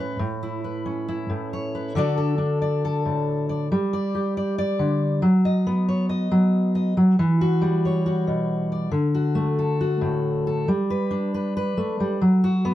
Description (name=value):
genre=folk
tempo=138 BPM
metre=4/4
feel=straight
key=D major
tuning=A4 = 442 Hz
part: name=fingerpicked steel-string acoustic guitar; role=solo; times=0.0-12.7 s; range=A2 to D#5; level=-20 LUFS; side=equal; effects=none
room=wet studio reverb, RT60 0.6 s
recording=band playing live in one room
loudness=-20 LUFS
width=side -13 dB against mid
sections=0.0-1.9 A section; 1.9-12.7 B section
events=none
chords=0.0 Aadd9; 1.9 D; 3.7 G5; 5.2 B/F#; 7.2 Emadd9; 8.9 D; 10.7 G; 12.2 B5/F#